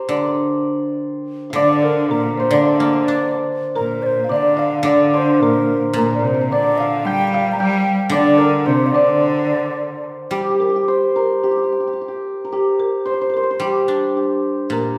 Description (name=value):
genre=chinese traditional, Chinese chamber ensemble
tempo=109 BPM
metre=2/4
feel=rubato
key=D jue mode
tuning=A4 = 440 Hz
part: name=folk marimba with medium mallets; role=melody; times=0.0-15.0 s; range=G4 to Bb5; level=-24 LUFS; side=equal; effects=none
part: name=hammered dulcimer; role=second line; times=0.0-15.0 s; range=G4 to G5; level=-23 LUFS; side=equal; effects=none
part: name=guzheng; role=accompaniment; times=0.1-15.0 s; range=Bb2 to D4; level=-24 LUFS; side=equal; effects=none
part: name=breathy bright xiao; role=second line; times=1.6-10.0 s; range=Bb4 to Bb5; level=-25 LUFS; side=equal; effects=none
part: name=rich cello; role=second line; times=1.6-10.0 s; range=Bb2 to G3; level=-24 LUFS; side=equal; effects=none
room=wet recital hall reverb, RT60 1.6 s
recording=heard from further back in the room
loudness=-18 LUFS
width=mono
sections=0.0-1.6 A section; 1.6-10.3 B section; 10.3-15.0 A section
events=none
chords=none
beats=| 0.41 0.99 | 1.56 2.11 | 2.66 3.21 | 3.75 4.29 | 4.84 5.40 | 5.95 6.51 | 7.05 7.59 | 8.13 8.66 | 9.21 9.77 | 10.33 10.88 | 11.43 11.97 | 12.51 13.05 | 13.60 14.15 | 14.72